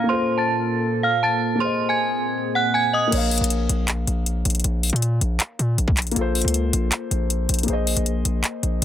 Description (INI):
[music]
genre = hip hop, trap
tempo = 158 BPM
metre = 4/4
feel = half-time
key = Bb minor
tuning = A4 = 440 Hz
[part]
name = metallic FM bell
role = melody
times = 0.0-3.1 s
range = C5 to A6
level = -21 LUFS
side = right 2 dB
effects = chorus, low-pass filter
[part]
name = dark concert grand piano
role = accompaniment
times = 0.0-8.8 s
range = Bb3 to F5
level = -27 LUFS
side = left 4 dB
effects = low-pass filter
[part]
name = warbly tape-like pad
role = sustained chords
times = 0.0-3.1 s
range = Bb2 to A4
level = -27 LUFS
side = right 2 dB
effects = chorus, built-in reverb, low-pass filter
[part]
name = distorted 808-style bass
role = bass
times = 3.1-8.8 s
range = Bb1 to Bb2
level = -22 LUFS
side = equal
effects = distortion
[part]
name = trap drum kit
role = drums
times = 3.1-8.8 s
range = crash cymbal, handclaps, hi-hat, kick drum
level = -23 LUFS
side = left 1 dB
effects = none
[sound]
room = little or no reverb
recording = dense, heavily limited modern master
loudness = -19 LUFS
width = side -11 dB against mid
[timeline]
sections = 0.0-3.1 A section; 3.1-8.8 B section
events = filter sweep 0.0-3.1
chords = 0.1 F/Bb; 1.6 Ab/Bb; 3.1 Bbm; 6.2 F/Bb; 7.7 Ab/Bb